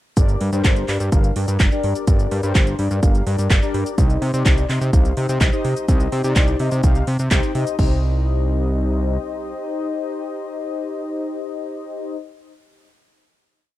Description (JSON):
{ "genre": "italo disco", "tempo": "126 BPM", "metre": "4/4", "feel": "straight", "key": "C minor", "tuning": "A4 = 441 Hz", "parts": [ { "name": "mellow synth brass", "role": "stabs", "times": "0.2-12.2 s", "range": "D4 to G5", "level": "-25 LUFS", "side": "left 4 dB", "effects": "chorus, vintage 12-bit sampler grit, tape echo" }, { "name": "fat analog bass", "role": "bass", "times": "0.2-9.2 s", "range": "G1 to C3", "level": "-20 LUFS", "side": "equal", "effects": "tube saturation" }, { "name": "electronic kick drum", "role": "drums", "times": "0.2-7.9 s", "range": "none", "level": "-16 LUFS", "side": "equal", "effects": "studio reverb" }, { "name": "house drum kit", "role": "drums", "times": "0.2-7.9 s", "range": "cabasa, crash cymbal, handclaps, hi-hat", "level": "-26 LUFS", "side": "equal", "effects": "studio reverb" } ], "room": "little or no reverb", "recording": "dry, close 1970s-style studio recording", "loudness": "-17 LUFS", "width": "side -15 dB against mid", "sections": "0.2-7.8 chorus; 7.8-11.6 final chord", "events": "none", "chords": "0.2 Gm; 4.0 Cm" }